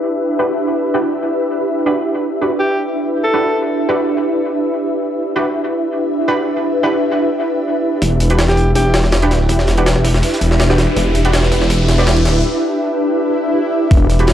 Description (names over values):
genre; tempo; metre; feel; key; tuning
drum and bass, jungle; 163 BPM; 4/4; straight; E minor; A4 = 442 Hz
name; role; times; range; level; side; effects
ethereal airy pad; sustained chords; 0.0-14.3 s; D4 to E5; -17 LUFS; equal; ensemble chorus, built-in reverb, vintage 12-bit sampler grit
orchestra-hit-like synth stab; stabs; 0.4-14.3 s; D4 to B4; -22 LUFS; right 1 dB; built-in reverb, dub echo
clear alto saxophone; melody; 2.6-3.6, 8.5-9.0 s; G4 to A4; -20 LUFS; equal; dub echo
detuned saw bass; bass; 8.0-14.3 s; D1 to E1; -14 LUFS; equal; none
crunchy breakbeat drum kit; drums; 8.0-14.3 s; hi-hat, snare drum; -31 LUFS; right 1 dB; none
jungle sampler-style drum kit; drums; 8.0-14.3 s; hi-hat, kick drum, snare drum; -17 LUFS; equal; overdrive, high-pass filter on hats, high-pass filter on kick, high-pass filter on snare
riser and swell; sound effects; 10.0-13.9 s; none; -27 LUFS; equal; none
room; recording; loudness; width
moderate lush hall reverb, RT60 1.9 s, small room ambience; dry, gritty hardware recording, transformer saturation, cassette tape, low-pass filter; -13 LUFS; side -11 dB against mid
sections
0.0-8.0 A section; 8.0-13.9 B section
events
filter sweep on synth stab 0.0-8.0; filter sweep 0.0-8.0; build-up 8.0-13.9; riser 10.0-12.4; break 12.4-13.9; swell 13.3-13.9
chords
0.0 Em7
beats
0.29 | 0.66 1.03 1.40 1.76 | 2.13 2.50 2.87 3.24 | 3.61 3.97 4.34 4.71 | 5.08 5.45 5.81 6.18 | 6.55 6.92 7.29 7.66 | 8.02 8.39 8.76 9.13 | 9.49 9.86 10.23 10.60 | 10.97 11.34 11.70 12.07 | 12.44 12.81 13.18 13.54 | 13.91 14.28